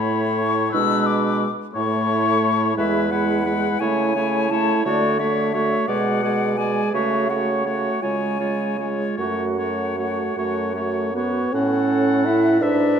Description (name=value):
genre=classical, slow romantic movement for wind quintet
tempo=50-60 BPM (dotted quarters)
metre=6/8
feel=rubato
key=F# minor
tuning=A4 = 441 Hz
part: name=concert flute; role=melody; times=0.0-13.0 s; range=B4 to E6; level=-26 LUFS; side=left 9 dB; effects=none
part: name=bright oboe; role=second line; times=0.0-13.0 s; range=B4 to F#5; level=-28 LUFS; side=left 5 dB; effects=none
part: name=clear French horn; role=accompaniment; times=0.0-13.0 s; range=G#3 to E4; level=-23 LUFS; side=equal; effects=none
part: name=warm clarinet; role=accompaniment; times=0.0-13.0 s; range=D4 to B4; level=-25 LUFS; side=right 8 dB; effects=none
part: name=warm bassoon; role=bass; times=0.0-13.0 s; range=E2 to D3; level=-26 LUFS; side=right 3 dB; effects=none
room=wet recital hall reverb, RT60 1.9 s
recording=dark, warm production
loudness=-18 LUFS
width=side -7 dB against mid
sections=0.0-11.5 A section; 11.5-13.0 B section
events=none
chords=0.0 A; 0.7 G#dim/B; 1.8 A; 2.8 E; 3.8 A/C#; 4.9 Dmaj7; 5.9 G#dim/B; 6.9 F#m/C#; 8.0 C#; 9.2 F#m; 11.5 A